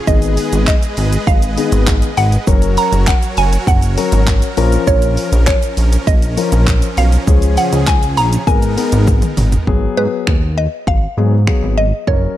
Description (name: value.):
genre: dance-pop.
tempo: 100 BPM.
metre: 4/4.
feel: straight.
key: G# dorian.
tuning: A4 = 440 Hz.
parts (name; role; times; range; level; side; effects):
supersaw chords; sustained chords; 0.0-9.7 s; C#3 to D#5; -24 LUFS; right 2 dB; sidechain pumping.
mallet-like synth pluck; melody; 0.1-12.4 s; B4 to A#5; -20 LUFS; right 1 dB; chorus, phaser, ping-pong delay.
dark grand piano; accompaniment; 0.1-12.4 s; D#3 to A#4; -19 LUFS; left 6 dB; sidechain pumping.
chorused synth bass; bass; 0.1-12.3 s; F#1 to G#2; -14 LUFS; equal; sidechain pumping.
pop drum kit; drums; 0.1-12.2 s; finger snaps, handclaps, hi-hat, kick drum, shaker, toms; -16 LUFS; equal; none.
egg shaker; percussion; 0.1-9.7 s; none; -36 LUFS; right 16 dB; none.
room: digital ambience.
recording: dark, warm production.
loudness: -11 LUFS.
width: side -13 dB against mid.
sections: 0.0-9.7 A section; 9.7-12.4 B section.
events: drum fill 9.1-9.7.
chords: 0.1 G#m; 2.5 F#; 4.6 A#m; 7.3 C#; 8.5 G#madd9; 9.7 G#m7.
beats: | 0.07 0.67 1.27 1.87 | 2.47 3.07 3.67 4.27 | 4.87 5.47 6.07 6.67 | 7.27 7.87 8.47 9.07 | 9.67 10.27 10.87 11.47 | 12.07.